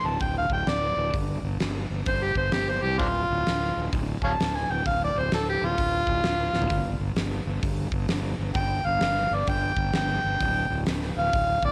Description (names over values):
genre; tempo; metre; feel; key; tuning
blues rock power trio and southern rock; 129 BPM; 4/4; swing 63% on 8ths; D minor; A4 = 439 Hz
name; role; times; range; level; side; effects
overdriven harmonica; melody; 0.0-11.7 s; C4 to A5; -28 LUFS; equal; none
fuzz fingered electric bass; bass; 0.0-11.7 s; D1 to C2; -31 LUFS; equal; overdrive
huge arena drum kit; drums; 0.2-11.7 s; hi-hat, kick drum, snare drum, toms; -32 LUFS; equal; none
room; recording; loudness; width
moderate spring reverb, RT60 1.5 s, small room ambience; none; -26 LUFS; mono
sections
0.0-11.7 A section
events
harmonica solo 0.0-11.7; drum fill 6.5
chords
0.0 Dsus4; 1.1 Gsus4; 3.0 Dm; 6.7 G5; 10.4 Dm